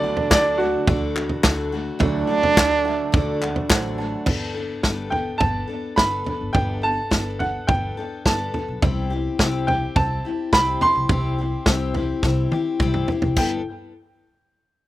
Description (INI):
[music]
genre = indie folk with a building arrangement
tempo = 106 BPM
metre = 4/4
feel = straight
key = G major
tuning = A4 = 440 Hz
[part]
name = warm upright piano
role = melody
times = 0.0-13.6 s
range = F#4 to C6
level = -23 LUFS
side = right 1 dB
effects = slapback echo
[part]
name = clear French horn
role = second line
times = 0.0-4.0 s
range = D4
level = -22 LUFS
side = right 4 dB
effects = none
[part]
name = felt-muted upright piano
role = accompaniment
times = 0.0-4.3 s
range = D2 to A5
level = -28 LUFS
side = right 4 dB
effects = slapback echo
[part]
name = picked steel-string acoustic guitar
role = accompaniment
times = 0.0-13.6 s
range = C3 to A4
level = -27 LUFS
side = left 5 dB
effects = slapback echo
[part]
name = upright bass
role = bass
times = 0.0-13.6 s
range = G1 to D2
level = -28 LUFS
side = equal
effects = none
[part]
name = natural country drum kit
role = drums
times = 0.2-13.5 s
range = crash cymbal, kick drum, snare drum, toms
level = -21 LUFS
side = equal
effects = none
[part]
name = group handclap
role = percussion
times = 0.3-3.8 s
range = none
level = -28 LUFS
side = left 2 dB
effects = none
[sound]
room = little or no reverb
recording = recorded outdoors, with no room sound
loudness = -19 LUFS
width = side -15 dB against mid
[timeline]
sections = 0.0-4.3 A section; 4.3-13.4 B section; 13.4-14.9 C section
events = felt piano fill 2.6-4.3; drum fill 12.2-13.4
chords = 0.0 D; 4.3 Gadd9; 8.8 C; 13.4 Gadd9